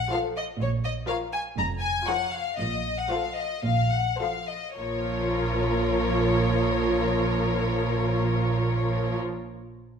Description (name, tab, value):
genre	quick classical-period movement for symphony orchestra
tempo	102-124 BPM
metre	4/4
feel	rubato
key	Bb minor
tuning	A4 = 439 Hz
part	rich chamber violin section	melody	0.0-9.2 s	Db5 to Bb5	-30 LUFS	left 6 dB	none
part	rich chamber violin section	second line	0.1-9.2 s	A4 to Db5	-30 LUFS	left 2 dB	none
part	clear studio viola section	accompaniment	0.1-9.2 s	F3 to F4	-29 LUFS	equal	none
part	clear studio cello section	bass	0.6-9.2 s	F2 to Bb2	-30 LUFS	right 4 dB	none
part	rich chamber double bass section	bass	0.6-9.2 s	F1 to Bb1	-31 LUFS	right 2 dB	none
room	wet recital hall reverb, RT60 1.4 s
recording	minimal, uncompressed stereo recording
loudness	-24 LUFS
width	side -7 dB against mid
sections	0.0-4.8 A section; 4.8-9.3 B section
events	slowing down 0.0-4.8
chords	0.0 F; 0.6 Bbm; 2.6 F/Bb